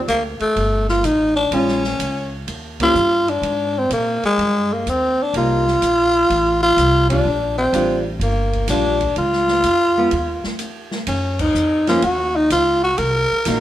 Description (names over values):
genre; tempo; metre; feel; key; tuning
jazz, small-group swing and bop; 126 BPM; 4/4; swing 68% on 8ths; unclear; A4 = 436 Hz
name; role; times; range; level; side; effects
hollow-body jazz guitar; accompaniment; 0.0-13.6 s; Eb3 to G4; -22 LUFS; right 1 dB; none
upright bass; bass; 0.0-13.6 s; G1 to Bb2; -24 LUFS; equal; none
growling tenor saxophone; melody; 0.1-13.6 s; Ab3 to Bb4; -17 LUFS; equal; none
open jazz drum kit; drums; 0.1-13.6 s; crash cymbal, hi-hat, kick drum, ride cymbal, snare drum; -29 LUFS; right 1 dB; none
room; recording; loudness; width
wet stone room reverb, RT60 1.3 s; band playing live in one room; -15 LUFS; side -13 dB against mid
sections
0.0-11.1 A section; 11.1-13.6 B section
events
band accent 2.7, 7.0, 11.3; break 10.6-11.1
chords
0.0 Ebmaj7; 1.5 Bbm7; 2.5 Eb7; 3.4 Absus2; 5.3 Cm7; 6.3 F; 7.3 Bb6; 9.2 Db; 11.1 F#maj7(no3); 13.0 Cm7b5